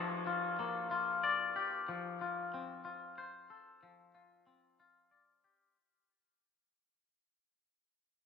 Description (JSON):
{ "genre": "rock", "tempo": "62 BPM (dotted quarters)", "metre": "6/8", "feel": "straight", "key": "unclear", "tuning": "A4 = 440 Hz", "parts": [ { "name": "twangy electric guitar", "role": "arpeggios", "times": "0.0-5.8 s", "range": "F3 to D5", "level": "-36 LUFS", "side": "left 4 dB", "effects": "spring reverb, digital delay" } ], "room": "moderate plate reverb, RT60 1.8 s, studio reverb", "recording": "none", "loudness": "-35 LUFS", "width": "side -6 dB against mid", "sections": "0.0-5.8 A section", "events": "fade-out 0.0-5.8", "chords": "0.0 Gm/F; 1.9 F; 3.8 Csus2/F" }